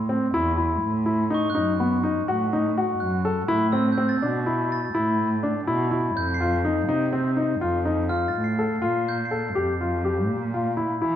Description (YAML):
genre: contemporary instrumental, chamber music in an uneven meter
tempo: 247 BPM (eighths)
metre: 11/8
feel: straight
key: unclear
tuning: A4 = 440 Hz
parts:
  - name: muted cello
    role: bass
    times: 0.0-11.2 s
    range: E2 to E3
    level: -26 LUFS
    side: right 1 dB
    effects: none
  - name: glockenspiel with soft plastic mallets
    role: texture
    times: 0.0-10.3 s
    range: C6 to C7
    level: -33 LUFS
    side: right 5 dB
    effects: none
  - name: warm baby grand piano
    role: arpeggios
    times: 0.1-11.2 s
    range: B3 to A4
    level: -24 LUFS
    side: left 2 dB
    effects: none
room: wet recital hall reverb, RT60 1.6 s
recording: dark, warm production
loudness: -21 LUFS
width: side -10 dB against mid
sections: 0.0-8.8 A section; 8.8-11.2 B section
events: none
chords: 0.0 Am; 0.8 B7 (rootless); 3.5 Em/A; 6.2 F7; 8.8 Bbmaj7(no3)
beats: 0.09 0.33 0.58 | 0.82 1.06 1.30 1.55 1.79 2.03 2.28 2.52 2.76 3.00 3.25 | 3.49 3.73 3.97 4.22 4.46 4.70 4.94 5.19 5.43 5.67 5.91 | 6.16 6.40 6.64 6.88 7.13 7.37 7.61 7.85 8.10 8.34 8.58 | 8.82 9.07 9.31 9.55 9.80 10.04 10.28 10.53 10.77 11.01